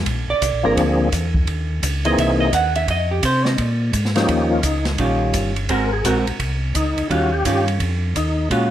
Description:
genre	soul jazz organ trio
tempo	170 BPM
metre	4/4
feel	swing 64% on 8ths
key	Eb mixolydian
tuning	A4 = 440 Hz
part	vintage hollow-body jazz guitar	accompaniment	0.0-8.7 s	Eb3 to Gb5	-21 LUFS	right 2 dB	none
part	mellow tonewheel organ	bass	0.0-8.7 s	G1 to C3	-21 LUFS	equal	slow rotary speaker
part	open jazz drum kit	drums	0.1-8.6 s	hi-hat, kick drum, ride cymbal, snare drum	-24 LUFS	right 1 dB	none
part	percussive tonewheel organ	melody	0.6-8.7 s	Fb3 to Bb4	-21 LUFS	left 2 dB	slow rotary speaker, overdrive, chorus vibrato
room	moderate large studio reverb, RT60 1.2 s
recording	none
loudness	-17 LUFS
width	side -11 dB against mid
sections	0.0-4.3 A section; 4.3-8.7 A section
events	hollow-body jazz guitar solo 0.0-4.3; tonewheel organ solo 4.3-8.7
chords	0.1 Bb9; 1.5 Eb5; 2.2 C7alt; 2.9 F5; 3.6 Bb7; 4.3 Eb9; 5.7 Ab9; 7.1 Eb9

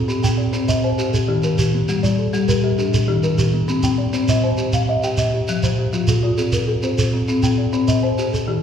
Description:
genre	southern african traditional, mbira-style interlocking cycle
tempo	134 BPM (dotted quarters)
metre	12/8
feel	straight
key	C equiheptatonic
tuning	A4 = 440 Hz
part	folk marimba with soft mallets	arpeggios	0.0-8.6 s	Eb3+43c to G5	-21 LUFS	left 4 dB	none
part	kalimba	arpeggios	0.0-8.6 s	Eb3+43c to A5-43c	-24 LUFS	right 1 dB	none
part	shekere	percussion	0.1-8.5 s	none	-20 LUFS	right 2 dB	none
room	wet recital hall reverb, RT60 1.4 s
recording	heard from further back in the room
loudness	-16 LUFS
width	side -8 dB against mid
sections	0.1-8.6 A section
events	none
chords	0.1 Cm; 1.0 Eb; 1.9 Gm; 2.8 Eb; 3.7 Cm; 5.5 F; 7.3 Cm

